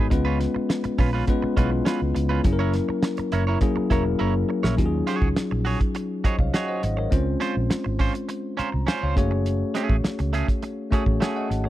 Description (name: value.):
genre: lush 1970s-style soul.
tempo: 103 BPM.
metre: 4/4.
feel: straight.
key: unclear.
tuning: A4 = 443 Hz.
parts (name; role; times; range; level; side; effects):
bell-like tine electric piano; accompaniment; 0.0-11.7 s; F#3 to Bb5; -25 LUFS; left 2 dB; none.
electric guitar at the edge of break-up; riff; 0.0-11.7 s; A3 to C#5; -30 LUFS; right 6 dB; none.
vintage muted fingered electric bass; bass; 0.0-11.7 s; E1 to Eb2; -25 LUFS; equal; none.
cloth-damped thuddy drum kit; drums; 0.1-11.6 s; hi-hat, kick drum, snare drum; -23 LUFS; equal; none.
room: little or no reverb.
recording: dry, close 1970s-style studio recording.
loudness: -21 LUFS.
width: side -14 dB against mid.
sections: 0.0-4.8 A section; 4.8-11.7 B section.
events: drum fill 4.2-4.8.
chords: 0.1 C#7; 2.4 F#7; 4.8 Ebm11; 7.1 Dbmaj7; 9.2 Gbmadd9.